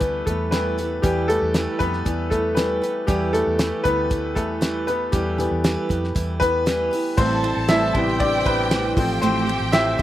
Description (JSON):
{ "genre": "piano-driven pop", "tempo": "117 BPM", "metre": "4/4", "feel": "straight", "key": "unclear", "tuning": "A4 = 440 Hz", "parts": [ { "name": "clear concert grand piano", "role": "accompaniment", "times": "0.0-10.0 s", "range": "C3 to E5", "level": "-22 LUFS", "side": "left 1 dB", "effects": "none" }, { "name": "picked steel-string acoustic guitar", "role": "riff", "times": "0.0-10.0 s", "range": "A2 to C5", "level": "-27 LUFS", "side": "right 4 dB", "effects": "none" }, { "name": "vintage muted fingered electric bass", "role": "bass", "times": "0.0-10.0 s", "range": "A1 to F2", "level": "-28 LUFS", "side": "equal", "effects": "none" }, { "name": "damped 70s drum kit", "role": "drums", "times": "0.0-10.0 s", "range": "crash cymbal, hi-hat, kick drum, ride cymbal, snare drum", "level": "-23 LUFS", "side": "equal", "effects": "none" }, { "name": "warm studio violin section", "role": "second line", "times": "7.2-10.0 s", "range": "G4 to A5", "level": "-25 LUFS", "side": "right 1 dB", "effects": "none" } ], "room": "little or no reverb", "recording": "recorded outdoors, with no room sound", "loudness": "-19 LUFS", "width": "side -13 dB against mid", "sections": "0.0-7.2 A section; 7.2-10.0 B section", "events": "grand piano solo 0.0-7.2, 7.2-10.0", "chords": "0.0 Em; 7.2 Am7; 9.0 F/A" }